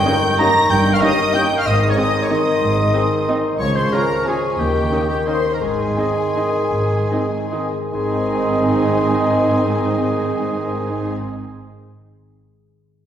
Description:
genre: classical.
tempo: 138-201 BPM.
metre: 3/4.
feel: rubato.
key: Ab major.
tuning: A4 = 439 Hz.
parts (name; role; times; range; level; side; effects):
warm symphonic violin section; melody; 0.0-11.1 s; G5 to Bb6; -28 LUFS; left 2 dB; none.
clear oboe; second line; 0.0-11.2 s; G4 to Bb5; -27 LUFS; right 1 dB; none.
silver concert flute; second line; 0.0-11.1 s; C6 to Db6; -28 LUFS; left 1 dB; none.
warm clarinet; second line; 0.0-11.1 s; G4 to Bb5; -24 LUFS; right 2 dB; none.
warm symphonic violin section; second line; 0.0-11.1 s; G4 to Bb5; -29 LUFS; left 1 dB; none.
mellow bassoon; accompaniment; 0.0-11.2 s; Eb3 to F3; -24 LUFS; right 1 dB; none.
concert harp; arpeggios; 0.0-12.0 s; G2 to Eb5; -25 LUFS; left 4 dB; none.
warm symphonic viola section; accompaniment; 0.1-11.2 s; C4 to F4; -26 LUFS; right 1 dB; none.
clear trombone section; sustained chords; 0.1-11.1 s; Eb3 to Bb3; -28 LUFS; right 2 dB; none.
dark French horn section; sustained chords; 0.1-11.2 s; C4 to Ab4; -28 LUFS; left 1 dB; none.
warm trumpet section; stabs; 0.1-11.1 s; Db5 to Eb5; -28 LUFS; right 1 dB; none.
warm symphonic cello section; bass; 0.7-11.1 s; Db2 to Ab2; -24 LUFS; right 1 dB; none.
warm symphonic double bass section; bass; 0.7-11.2 s; G1 to Eb2; -30 LUFS; right 2 dB; none.
room: wet scoring stage reverb, RT60 1.6 s.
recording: heard from further back in the room.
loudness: -15 LUFS.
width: side -9 dB against mid.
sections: 0.0-7.9 A section; 7.9-10.4 B section.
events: slowing down 5.1-7.9.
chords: 0.0 Eb7/G; 1.6 Ab; 3.6 Db; 4.6 Eb7; 5.6 Ab.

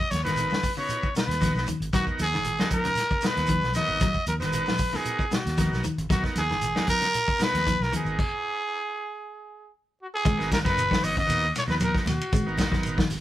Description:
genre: afrobeat.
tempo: 115 BPM.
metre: 4/4.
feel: straight.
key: G# minor.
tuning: A4 = 445 Hz.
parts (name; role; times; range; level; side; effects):
growling trumpet; melody; 0.0-12.6 s; F#4 to D#5; -27 LUFS; equal; none.
fingered electric bass; bass; 0.1-13.2 s; F#1 to D#2; -30 LUFS; equal; none.
warm soul drum kit; drums; 0.1-13.2 s; crash cymbal, hi-hat, kick drum, ride cymbal, snare drum; -28 LUFS; equal; none.
congas; percussion; 0.1-13.2 s; none; -33 LUFS; right 1 dB; none.
shekere; percussion; 0.1-13.2 s; none; -37 LUFS; right 2 dB; none.
combo organ; accompaniment; 0.2-13.0 s; B3 to C#5; -34 LUFS; right 2 dB; none.
clean electric guitar; arpeggios; 0.3-13.1 s; A#2 to G#3; -33 LUFS; left 3 dB; none.
room: moderate studio reverb, RT60 0.5 s.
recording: band playing live in one room.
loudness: -23 LUFS.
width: side -13 dB against mid.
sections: 0.0-10.3 A section; 10.3-13.2 B section.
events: stop 8.2-10.3.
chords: 0.0 G#m9.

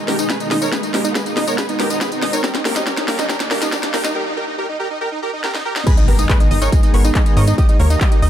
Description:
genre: uplifting trance.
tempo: 140 BPM.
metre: 4/4.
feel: straight.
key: G# harmonic minor.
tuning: A4 = 436 Hz.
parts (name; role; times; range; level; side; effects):
dense compressed supersaw; melody; 0.0-8.3 s; D#4 to D#5; -23 LUFS; right 2 dB; cassette tape, sidechain pumping, tape echo.
riser and impact; sound effects; 0.0-7.6 s; none; -26 LUFS; equal; none.
analog pluck; arpeggios; 0.1-8.3 s; G3 to D#5; -26 LUFS; left 1 dB; chorus, sidechain pumping, tape echo.
tight sequencer bass; bass; 0.1-8.3 s; G#1 to G#2; -16 LUFS; equal; tube saturation, sidechain pumping, high-pass filter.
techno drum kit; drums; 0.1-8.3 s; crash cymbal, handclaps, hi-hat, snare drum, tambourine; -22 LUFS; equal; studio reverb.
electronic kick drum; drums; 0.3-8.1 s; none; -15 LUFS; equal; high-pass filter on kick, studio reverb.
plucky unison lead; second line; 5.9-8.3 s; D#5 to D#6; -28 LUFS; equal; sidechain pumping, tape echo.
room: little or no reverb.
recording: high-pass filter.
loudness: -15 LUFS.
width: side -10 dB against mid.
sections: 0.0-5.9 A section; 5.9-8.3 B section.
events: build-up 0.0-5.9; drum fill 0.0-4.2, 5.4-5.9; riser 0.0-4.2; filter sweep on synth pluck 0.0-5.9; break 4.2-5.9; drop 5.9-8.3; impact 5.9-7.6.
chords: 0.0 G#m; 2.4 D#; 5.9 G#m; 7.6 D#.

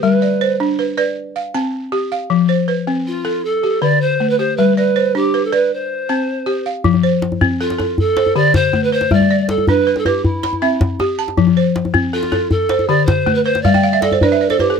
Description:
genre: west african traditional, West African string and xylophone music.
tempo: 106 BPM (dotted quarters).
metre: 12/8.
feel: straight.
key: F lydian.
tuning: A4 = 440 Hz.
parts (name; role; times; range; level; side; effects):
polished pan flute; melody; 0.0-14.8 s; E4 to D5; -17 LUFS; right 3 dB; none.
balafon; arpeggios; 0.0-14.8 s; D3 to B5; -16 LUFS; left 2 dB; none.
djembe; percussion; 6.8-14.7 s; none; -19 LUFS; left 1 dB; none.
room: little or no reverb.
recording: close, detailed microphones.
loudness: -13 LUFS.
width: side -6 dB against mid.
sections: 0.0-6.8 A section; 6.8-14.8 A section.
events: balafon fill 13.6-14.8.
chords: 0.0 G; 1.2 C5; 2.3 F; 3.4 D5; 4.6 G; 5.7 C5; 6.8 F; 8.0 D5; 9.1 G; 10.2 C; 11.4 F; 12.5 D5; 13.6 G.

